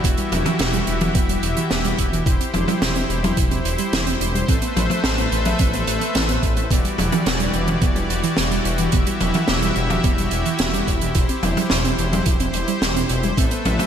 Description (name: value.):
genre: synthwave.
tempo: 108 BPM.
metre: 4/4.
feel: straight.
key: E minor.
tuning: A4 = 440 Hz.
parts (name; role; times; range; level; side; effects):
soft supersaw; sustained chords; 0.0-13.9 s; E3 to E5; -24 LUFS; left 2 dB; sidechain pumping.
soft round pluck; arpeggios; 0.0-13.9 s; E3 to E4; -26 LUFS; right 3 dB; chorus, ping-pong delay, slapback echo.
wide detuned saw bass; bass; 0.0-13.8 s; E1 to A1; -24 LUFS; equal; chorus.
electronic kick drum; drums; 0.0-13.5 s; none; -20 LUFS; equal; none.
open jazz drum kit; drums; 0.0-13.9 s; hi-hat, snare drum, toms; -23 LUFS; right 1 dB; none.
room: moderate lush hall reverb, RT60 1.9 s, studio reverb.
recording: big arena sound.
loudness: -17 LUFS.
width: side -8 dB against mid.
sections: 0.0-13.9 A section.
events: none.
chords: 0.0 Em; 2.3 C/E; 4.5 Amadd9; 6.7 Em7; 11.2 C/E.